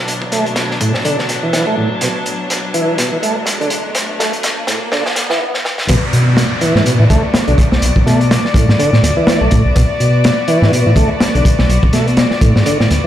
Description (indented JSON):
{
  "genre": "breakbeat, breaks",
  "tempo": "124 BPM",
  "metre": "4/4",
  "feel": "swing 57% on 16ths",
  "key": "B minor",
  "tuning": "A4 = 440 Hz",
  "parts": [
    { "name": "rich chamber string section", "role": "sustained chords", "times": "0.0-13.1 s", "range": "B2 to D5", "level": "-21 LUFS", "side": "left 2 dB", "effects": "sidechain pumping, low-pass filter" },
    { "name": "riser and downlifter", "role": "sound effects", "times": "1.2-9.8 s", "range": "none", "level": "-25 LUFS", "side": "equal", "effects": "none" },
    { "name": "crunchy breakbeat drum kit", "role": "drums", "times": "0.1-13.0 s", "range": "hi-hat, kick drum, snare drum", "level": "-15 LUFS", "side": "equal", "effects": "high-pass filter on kick, high-pass filter on hats, high-pass filter on snare, high-pass filter on room" },
    { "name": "tonewheel organ", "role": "riff", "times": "0.3-13.1 s", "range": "A2 to A3", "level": "-18 LUFS", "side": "equal", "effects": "overdrive, slow rotary speaker, low-pass filter, digital delay" },
    { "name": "dark detuned saw bass", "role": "bass", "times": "5.9-13.0 s", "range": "B1 to B2", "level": "-13 LUFS", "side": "equal", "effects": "none" }
  ],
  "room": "light reverb, studio reverb",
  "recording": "played on a big sound system in a bare room, stone room reverb, high-pass filter",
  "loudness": "-11 LUFS",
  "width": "side -12 dB against mid",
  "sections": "0.0-5.9 A section; 5.9-13.1 B section",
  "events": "build-up 0.0-5.9; filter sweep on tonewheel organ 0.0-5.9; riser 1.2-5.4; drum fill 2.0-5.4, 5.5-5.9; stop 5.4-5.9; drop 5.9-13.1",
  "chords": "0.0 Bm"
}